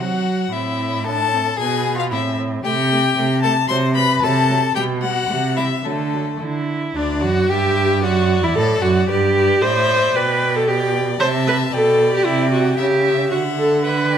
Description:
quick classical-period movement for string quartet; 113 BPM; 2/4; straight; G major; A4 = 442 Hz
clear violin; melody; 0.0-14.2 s; A4 to C6; -24 LUFS; left 8 dB
clear violin; second line; 0.0-14.2 s; A3 to A5; -25 LUFS; left 4 dB
rich viola; accompaniment; 0.0-14.2 s; F#3 to C5; -19 LUFS; right 1 dB
rich cello; bass; 0.0-14.2 s; D2 to F#3; -20 LUFS; right 3 dB
moderate recital hall reverb, RT60 1.6 s; -16 LUFS; side -8 dB against mid
0.0-7.0 A section; 7.0-14.2 B section
0.0 N.C.; 0.5 Am; 1.6 Fdim/Cb; 2.1 Am; 2.6 Am7/C; 3.7 Am69/C; 4.8 G/B; 5.3 C; 5.9 D5; 7.0 G5/D; 8.0 D; 9.1 G5; 10.2 G/B; 11.2 C; 11.7 G/B; 12.3 Cadd9; 12.8 C#dim; 13.3 D

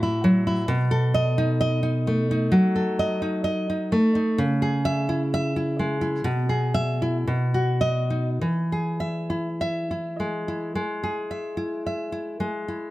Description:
romantic piece for solo classical guitar; 50-69 BPM; 4/4; rubato; E major; A4 = 445 Hz
nylon-string guitar; solo; 0.0-12.9 s; A2 to E5; -22 LUFS; equal
light reverb; close, detailed microphones; -22 LUFS; side -17 dB against mid
0.0-12.9 A section
0.0 F#m7/A; 0.7 B7; 4.4 C#m; 6.3 E/B; 7.3 B; 8.4 E

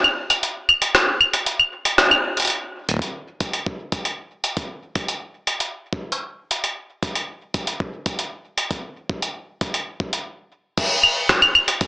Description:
IDM; 116 BPM; 4/4; straight
jungle sampler-style drum kit; drums; 0.0-11.9 s; claves, crash cymbal, hi-hat, rim click; -17 LUFS; equal
electronic kick drum; drums; 2.9-11.9 s; -28 LUFS; equal
moderate plate reverb, RT60 2.0 s; dry, gritty hardware recording, transformer saturation, small speaker sound; -19 LUFS; side -23 dB against mid
0.0-2.5 A section; 2.5-10.8 B section; 10.8-11.9 C section
kick drops out 0.4-2.5; band accent 2.0; stop 10.3-10.8

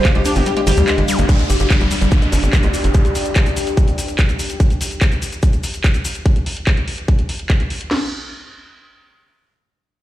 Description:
psychedelic trance; 145 BPM; 4/4; straight; A4 = 440 Hz
oud; melody; 0.0-1.2 s; G4; -22 LUFS; right 2 dB; phaser, sidechain pumping, ping-pong delay
metallic wobble bass; second line; 0.0-0.5 s; F3; -33 LUFS; right 2 dB
overdriven acid bass; riff; 0.0-2.9 s; G3 to G4; -23 LUFS; moving between left 5 dB and right 4 dB; distortion, auto-pan, sidechain pumping, tape echo
drum and bass drum kit; drums; 0.0-8.0 s; crash cymbal, kick drum, snare drum; -15 LUFS; equal
drum and bass drum kit; drums; 0.0-7.9 s; handclaps, hi-hat, ride cymbal; -24 LUFS; equal
deep dark ambient pad; texture; 0.0-4.6 s; D4 to G5; -24 LUFS; left 2 dB; chorus, built-in reverb, sidechain pumping
maracas; percussion; 0.1-6.2 s; -31 LUFS; left 4 dB
tight sequencer bass; bass; 0.2-2.9 s; G1 to D2; -16 LUFS; equal
zap and downlifter; sound effects; 1.1-4.6 s; -27 LUFS; equal
light reverb; played on a big sound system in a bare room, large studio reverb; -14 LUFS; side -14 dB against mid
0.0-1.3 A section; 1.3-7.9 B section; 7.9-10.0 C section
drop 0.0-1.3; kick drops out 0.5-1.3; filter sweep on acid bass 1.3-2.9
0.0 G5; 7.9 N.C.

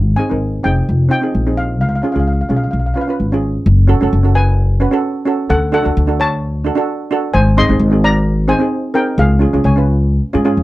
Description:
calypso; 130 BPM; 4/4; straight; F# harmonic minor from 3.7 s; A4 = 440 Hz
upright bass; bass; 0.0-10.6 s; E#1 to G#2; -13 LUFS; equal
steel pan; melody; 0.2-10.6 s; G#4 to B#5; -19 LUFS; left 2 dB
steel pan; accompaniment; 0.2-10.6 s; B#3 to B4; -18 LUFS; right 2 dB
light reverb; dry, close 1970s-style studio recording; -12 LUFS; side -17 dB against mid
0.0-3.7 A section; 3.7-10.6 B section
0.0 G#; 1.8 C#; 3.7 F#m; 5.5 D; 7.3 G#; 9.2 C#

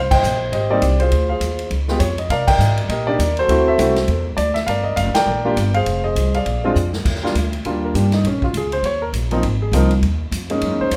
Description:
jazz piano trio; 202 BPM; 4/4; swing 60% on 8ths; Eb major; A4 = 443 Hz
warm concert grand piano; melody; 0.0-11.0 s; F3 to G5; -21 LUFS; equal
upright bass; bass; 0.0-11.0 s; F1 to C3; -22 LUFS; equal
swinging big-band drum kit; drums; 0.1-11.0 s; crash cymbal, hi-hat, kick drum, ride cymbal, snare drum; -29 LUFS; equal
moderate large studio reverb, RT60 0.9 s; -18 LUFS; mono
0.0-7.0 A section; 7.0-11.0 B section
band accent 0.1, 2.4, 5.1; drum fill 6.8; grand piano solo 7.0-11.0
0.0 Abmaj7; 1.1 Dm7b5; 1.7 Db; 2.3 Cm9; 3.5 D7; 4.7 Gm7; 5.9 Fm7; 6.5 Bb7; 7.0 Ebmaj9; 8.2 Bbm; 8.8 Eb5; 9.4 Ab69

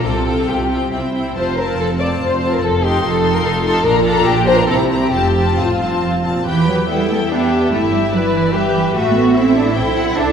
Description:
quick classical-period movement for string orchestra; 132-148 BPM; 3/4; rubato; F major, E minor from 6.5 s; A4 = 440 Hz
clear studio violin section; melody; 0.0-10.3 s; D5 to C6; -24 LUFS; left 6 dB
dark studio violin section; second line; 0.0-10.3 s; B3 to D5; -18 LUFS; left 2 dB
rich studio viola section; accompaniment; 0.0-10.3 s; C4 to B4; -21 LUFS; equal
warm studio cello section; bass; 0.0-10.3 s; F2 to E4; -19 LUFS; right 3 dB
rich studio double bass section; bass; 0.1-10.3 s; F1 to E2; -23 LUFS; right 2 dB
wet scoring stage reverb, RT60 1.6 s; heard from further back in the room; -13 LUFS; side -7 dB against mid
0.0-6.5 A section; 6.5-10.3 B section
0.0 Csus4; 0.9 C; 1.4 F; 2.6 F5; 3.9 Bb; 4.7 C7; 5.1 F; 6.5 Em; 7.7 Em/G; 8.9 Am

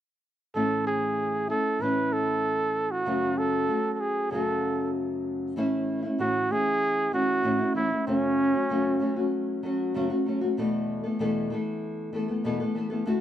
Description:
pop; 96 BPM; 4/4; straight; A major; A4 = 436 Hz
nylon-string guitar; accompaniment; 0.5-13.2 s; E2 to A4; -27 LUFS; left 1 dB
mellow trumpet; melody; 0.6-9.3 s; C#4 to B4; -26 LUFS; right 2 dB
small room ambience; dry, close 1970s-style studio recording; -24 LUFS; side -11 dB against mid
0.6-5.6 A section; 5.6-13.2 B section
0.6 A; 3.1 F#m; 5.6 A; 8.1 F#m; 10.6 Esus4

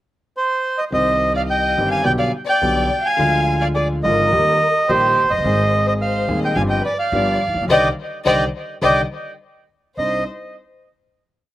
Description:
tango; 106 BPM; 4/4; rubato; C harmonic minor; A4 = 436 Hz
bandoneon; melody; 0.4-10.2 s; C5 to Ab5; -18 LUFS; right 2 dB; slapback echo
warm studio violin section; second line; 0.9-10.2 s; G4 to F5; -24 LUFS; left 4 dB; slapback echo
warm concert grand piano; accompaniment; 0.9-10.2 s; Eb1 to Ab4; -22 LUFS; left 1 dB
upright bass; bass; 0.9-10.2 s; F1 to Eb2; -25 LUFS; equal
little or no reverb; recorded outdoors, with no room sound; -16 LUFS; side -14 dB against mid
0.0-0.9 pickup bar; 0.9-10.0 A section; 10.0-11.5 final chord
band accent 7.7-10.0
0.0 N.C.; 0.9 Cm; 2.1 G/B; 3.2 Ddim; 4.3 Eb; 5.4 Ab; 6.6 G7sus4; 7.1 G7; 7.7 Cmadd9; 9.4 N.C.; 10.0 Cmadd9

